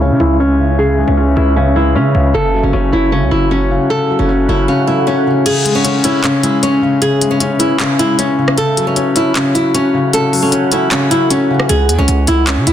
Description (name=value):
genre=hip hop, trap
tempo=154 BPM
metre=4/4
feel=half-time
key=C# minor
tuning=A4 = 440 Hz
part: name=flamenco guitar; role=melody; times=0.0-12.7 s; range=C#4 to A4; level=-15 LUFS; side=right 1 dB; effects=low-pass filter, ping-pong delay
part: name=felt-muted upright piano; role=accompaniment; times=0.0-11.7 s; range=C#3 to C#4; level=-16 LUFS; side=left 3 dB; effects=low-pass filter
part: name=deep dark ambient pad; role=sustained chords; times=0.0-12.7 s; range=C#4 to F#5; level=-22 LUFS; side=right 2 dB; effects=chorus, built-in reverb, low-pass filter
part: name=distorted 808-style bass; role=bass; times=0.0-4.7, 11.7-12.7 s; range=F#1 to C#3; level=-14 LUFS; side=right 1 dB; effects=distortion
part: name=trap drum kit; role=drums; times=5.5-12.7 s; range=crash cymbal, handclaps, hi-hat, rim click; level=-18 LUFS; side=left 1 dB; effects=none
room=light reverb, digital ambience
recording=dense, heavily limited modern master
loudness=-11 LUFS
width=side -10 dB against mid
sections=0.0-5.5 A section; 5.5-12.7 B section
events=filter sweep 0.0-5.5; kick muted 5.5-11.7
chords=0.0 C#m7; 2.3 F#m7; 5.5 C#m7; 8.6 F#m7; 11.7 C#m7